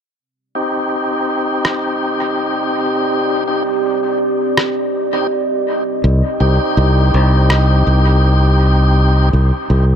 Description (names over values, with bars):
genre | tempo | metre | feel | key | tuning
ambient dub | 82 BPM | 4/4 | straight | C minor | A4 = 440 Hz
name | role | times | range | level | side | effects
deep dark ambient pad | sustained chords | 2.1-10.0 s | C4 to Eb5 | -20 LUFS | right 2 dB | chorus, built-in reverb
tonewheel organ | stabs | 0.6-9.3 s | C4 to G4 | -18 LUFS | left 1 dB | overdrive, fast rotary speaker, low-pass filter, dub echo
electronic rim click | drums | 1.6-7.7 s | none | -22 LUFS | equal | dub echo
fingered electric bass | bass | 6.0-10.0 s | C2 | -11 LUFS | equal | none
room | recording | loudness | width
light reverb | echo-heavy mix | -13 LUFS | side -8 dB against mid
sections
0.2-10.0 A section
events
filter sweep on tonewheel organ 0.2-10.0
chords
0.2 Cm